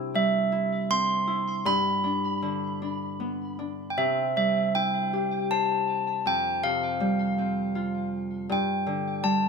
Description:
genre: children's music, lullaby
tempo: 79 BPM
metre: 3/4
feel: rubato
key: C major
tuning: A4 = 440 Hz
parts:
  - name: Celtic harp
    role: accompaniment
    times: 0.0-9.5 s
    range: F2 to C5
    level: -28 LUFS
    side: equal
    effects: none
  - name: handbells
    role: melody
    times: 0.2-9.5 s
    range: E5 to C6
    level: -26 LUFS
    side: right 1 dB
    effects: tape echo
room: moderate studio reverb, RT60 0.6 s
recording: none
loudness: -24 LUFS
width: side -5 dB against mid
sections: 0.0-4.0 A section; 4.0-9.5 B section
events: none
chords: 0.0 C; 1.7 G; 4.0 C; 6.3 Fsus2; 8.5 Gsus2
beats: 0.13 0.89 | 1.65 2.42 3.20 | 3.98 4.75 5.51 | 6.26 7.01 7.75 | 8.49 9.23

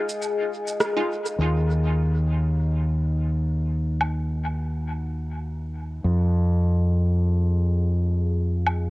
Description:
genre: ambient dub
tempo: 103 BPM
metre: 4/4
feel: swing 56% on 16ths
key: Eb minor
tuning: A4 = 442 Hz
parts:
  - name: deep dark ambient pad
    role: sustained chords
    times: 0.0-8.9 s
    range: Eb4 to Bb5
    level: -33 LUFS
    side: left 3 dB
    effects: chorus, built-in reverb, cassette tape
  - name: electronic shaker, rim click and woodblock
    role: drums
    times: 0.1-4.1, 8.7-8.8 s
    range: none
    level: -28 LUFS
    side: equal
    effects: overdrive, low-pass filter on perc, low-pass filter on snare, dub echo
  - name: filtered dub chord stab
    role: stabs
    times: 1.0-1.1 s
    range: Ab3 to F4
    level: -32 LUFS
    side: right 2 dB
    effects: phaser, cassette tape, dub echo
  - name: growling fingered electric bass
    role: bass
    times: 1.4-8.9 s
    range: Eb2 to F2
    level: -21 LUFS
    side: equal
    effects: overdrive, tube saturation
room: little or no reverb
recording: home recording on cassette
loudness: -21 LUFS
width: side -20 dB against mid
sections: 0.0-1.4 A section; 1.4-8.9 B section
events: break 0.0-1.4; band accent 0.8; filter sweep on ambient pad 1.4-8.9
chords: 0.0 Fm7; 1.4 Ebmadd9; 6.0 Fm7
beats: 0.22 0.80 | 1.39 1.97 2.55 3.13 | 3.72 4.30 4.88 5.46 | 6.05 6.63 7.21 7.79 | 8.38

